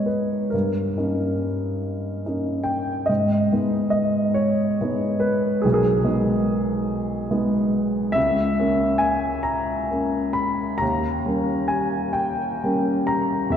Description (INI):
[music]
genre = classical, romantic nocturne for solo piano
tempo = 44-48 BPM (dotted quarters)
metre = 12/8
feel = rubato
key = G# minor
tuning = A4 = 440 Hz
[part]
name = warm upright piano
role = solo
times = 0.0-13.6 s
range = B1 to B5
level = -20 LUFS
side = equal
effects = none
[sound]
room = wet church reverb, RT60 2.5 s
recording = dark, warm production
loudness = -20 LUFS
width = side -8 dB against mid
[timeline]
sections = 0.0-13.6 A section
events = none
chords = 0.0 G#m; 0.5 D#7/G; 3.1 G#m; 5.6 G#m/B; 8.2 A#dim/C#; 10.8 D#7